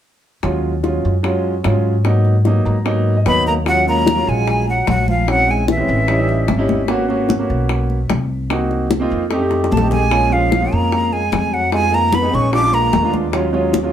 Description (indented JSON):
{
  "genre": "Afro-Cuban jazz",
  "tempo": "149 BPM",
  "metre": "4/4",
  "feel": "straight",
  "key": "Eb minor",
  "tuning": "A4 = 440 Hz",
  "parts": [
    { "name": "warm grand piano", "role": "accompaniment", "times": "0.4-13.9 s", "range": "Gb3 to Bb5", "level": "-20 LUFS", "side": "right 2 dB", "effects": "none" },
    { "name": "upright bass", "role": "bass", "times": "0.4-13.9 s", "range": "Ab1 to Ab2", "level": "-19 LUFS", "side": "equal", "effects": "none" },
    { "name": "bongos", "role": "percussion", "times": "0.4-13.9 s", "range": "none", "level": "-23 LUFS", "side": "left 4 dB", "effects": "none" },
    { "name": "breathy bright jazz flute", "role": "melody", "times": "3.3-6.7, 9.7-13.1 s", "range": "Fb5 to D6", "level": "-18 LUFS", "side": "right 1 dB", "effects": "none" },
    { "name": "mellow trombone", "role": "second line", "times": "3.3-6.7, 9.7-13.1 s", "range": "Fb3 to D4", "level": "-23 LUFS", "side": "left 4 dB", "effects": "none" },
    { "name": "congas", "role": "percussion", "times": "3.7-13.9 s", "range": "none", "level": "-24 LUFS", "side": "left 3 dB", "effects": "none" }
  ],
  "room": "wet club reverb, RT60 0.6 s",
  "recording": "heard from further back in the room",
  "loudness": "-14 LUFS",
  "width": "side -10 dB against mid",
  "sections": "0.4-3.7 A section; 3.7-13.9 B section",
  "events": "grand piano fill 2.5-3.7; drum fill 9.5-10.1",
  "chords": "0.4 Ebm11; 2.1 Abm9; 3.7 Ebm11; 5.3 Bbm7b5; 6.1 A7#11; 6.9 Abm11; 8.5 Cm7b5; 9.3 F7; 10.1 Bbm7; 11.7 Fm7b5; 12.5 Bb7b9; 13.3 Ebm11"
}